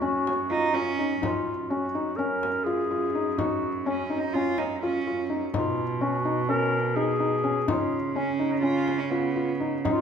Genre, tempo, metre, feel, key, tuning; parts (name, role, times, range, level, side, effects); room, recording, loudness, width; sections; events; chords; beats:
contemporary instrumental, chamber music in an uneven meter; 251 BPM (eighths); 9/8; straight; F# major; A4 = 440 Hz
breathy clarinet; melody; 0.0-10.0 s; E#4 to A#4; -28 LUFS; left 2 dB
felt-muted upright piano; arpeggios; 0.0-10.0 s; C#4 to E#4; -28 LUFS; left 2 dB
rich cello; bass; 0.0-10.0 s; F#2 to C#3; -30 LUFS; right 5 dB
frame drum; percussion; 0.3-10.0 s; -34 LUFS; left 4 dB
warm cello; second line; 0.5-9.7 s; B3 to E#4; -30 LUFS; right 4 dB
moderate concert hall reverb, RT60 1.9 s; minimal, uncompressed stereo recording; -24 LUFS; side -7 dB against mid
0.0-1.2 A section; 1.2-10.0 B section
0.0 F#5; 5.5 B6; 7.7 C#7
0.02 0.26 0.50 0.74 0.98 | 1.23 1.47 1.71 1.95 2.19 2.43 2.67 2.91 3.15 | 3.39 3.63 3.87 4.11 4.35 4.59 4.83 5.06 5.30 | 5.54 5.78 6.01 6.25 6.49 6.73 6.96 7.20 7.44 | 7.68 7.92 8.16 8.39 8.64 8.88 9.12 9.37 9.61 | 9.85